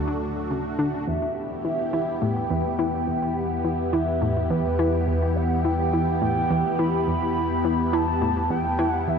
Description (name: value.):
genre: ambient, sequencer-driven space music.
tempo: 105 BPM.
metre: 4/4.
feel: straight.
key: E minor.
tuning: A4 = 440 Hz.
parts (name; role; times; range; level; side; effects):
lush unison pad; sustained chords; 0.0-9.2 s; A3 to G4; -27 LUFS; left 1 dB; chorus, phaser.
analog pluck; riff; 0.0-9.2 s; E2 to E3; -26 LUFS; equal; chorus, ping-pong delay.
analog drone; bass; 0.0-9.2 s; D2 to E2; -29 LUFS; equal; chorus.
expressive synth lead; melody; 1.1-9.2 s; B4 to B5; -27 LUFS; right 2 dB; analog chorus, ping-pong delay.
room: wet cathedral reverb, RT60 5.1 s.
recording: in a vast, echoing space, cassette tape.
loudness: -22 LUFS.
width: side -6 dB against mid.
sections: 0.0-9.2 A section.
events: none.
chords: 0.0 D; 1.1 Em.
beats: 0.50 | 1.07 1.65 2.22 2.79 | 3.36 3.93 4.50 5.08 | 5.65 6.22 6.79 7.36 | 7.93 8.50 9.07.